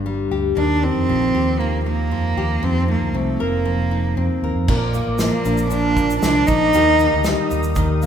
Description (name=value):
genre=acoustic pop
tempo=117 BPM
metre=4/4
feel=straight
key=unclear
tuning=A4 = 439 Hz
part: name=nylon-string guitar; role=accompaniment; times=0.0-8.1 s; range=G2 to Bb4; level=-23 LUFS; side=left 4 dB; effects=none
part: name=fingered electric bass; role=bass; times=0.0-8.1 s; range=F1 to F2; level=-22 LUFS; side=right 1 dB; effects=none
part: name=warm cello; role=melody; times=0.6-7.5 s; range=A3 to Eb4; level=-19 LUFS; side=right 2 dB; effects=none
part: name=mellow tonewheel organ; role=sustained chords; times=4.7-8.1 s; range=F4 to Eb6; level=-30 LUFS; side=right 1 dB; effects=slow rotary speaker
part: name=natural country drum kit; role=drums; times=4.7-8.1 s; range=crash cymbal, kick drum, shaker, snare drum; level=-24 LUFS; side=right 1 dB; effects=none
room=moderate church reverb, RT60 3.6 s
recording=recorded in a church or concert hall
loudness=-16 LUFS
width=side -8 dB against mid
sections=0.0-4.7 A section; 4.7-8.1 B section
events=none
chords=0.0 G5; 0.6 Ebadd9; 2.6 F7sus4; 4.7 Bb; 6.7 Eb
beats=0.06 | 0.57 1.09 1.60 2.12 | 2.63 3.15 3.66 4.17 | 4.69 5.20 5.72 6.23 | 6.74 7.25 7.77